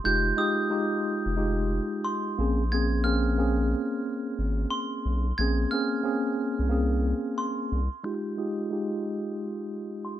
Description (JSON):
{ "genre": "hip hop, boom-bap hip-hop", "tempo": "90 BPM", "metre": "4/4", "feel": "swing 62% on 16ths", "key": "F minor", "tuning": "A4 = 440 Hz", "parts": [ { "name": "mellow tine electric piano", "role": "accompaniment", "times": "0.0-10.2 s", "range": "Ab3 to Ab4", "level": "-28 LUFS", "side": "equal", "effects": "medium stereo tremolo, high-pass filter, low-pass filter" }, { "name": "glockenspiel with hard plastic mallets", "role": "melody", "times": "0.1-10.2 s", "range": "C6 to Ab6", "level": "-32 LUFS", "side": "right 2 dB", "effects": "high-pass filter, low-pass filter, slapback echo" }, { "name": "round analog bass", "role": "bass", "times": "0.1-7.9 s", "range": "F1 to C2", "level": "-26 LUFS", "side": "equal", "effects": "none" } ], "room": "small room reverb", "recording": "rough home demo mix", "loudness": "-25 LUFS", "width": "side -12 dB against mid", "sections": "0.0-8.0 A section; 8.0-10.2 B section", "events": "none", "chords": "0.0 Fm9; 2.4 Bbm9; 8.0 Fm9", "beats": "| 0.05 0.71 1.38 2.05 | 2.71 3.38 4.05 4.71 | 5.38 6.05 6.71 7.38 | 8.05 8.71 9.38 10.05" }